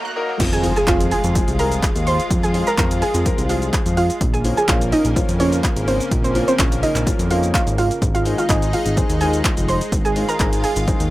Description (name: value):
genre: dance-pop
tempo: 126 BPM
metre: 4/4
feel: straight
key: unclear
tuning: A4 = 440 Hz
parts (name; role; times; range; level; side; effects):
- lush unison pad; sustained chords; 0.0-11.1 s; Db3 to Bb4; -27 LUFS; equal; chorus, sidechain pumping
- warm concert grand piano; accompaniment; 0.2-11.0 s; Eb3 to Bb4; -26 LUFS; left 3 dB; none
- fat analog bass; bass; 0.4-11.1 s; F1 to F2; -21 LUFS; equal; sidechain pumping
- punchy analog drum machine; drums; 0.4-11.1 s; crash cymbal, handclaps, hi-hat, kick drum, shaker; -20 LUFS; equal; none
- impact; sound effects; 0.4-2.3 s; none; -27 LUFS; equal; none
- soft round pluck; melody; 0.5-10.7 s; C4 to C6; -21 LUFS; right 2 dB; chorus, sidechain pumping, digital delay
room: little or no reverb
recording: rough home demo mix, high-pass filter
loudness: -16 LUFS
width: side -17 dB against mid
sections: 0.4-11.1 A section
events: break 0.0-0.4; riser 0.0-0.4; drop 0.4-11.1; impact 0.4-2.3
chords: 0.4 Fm; 4.2 Bbmadd9; 8.0 Ab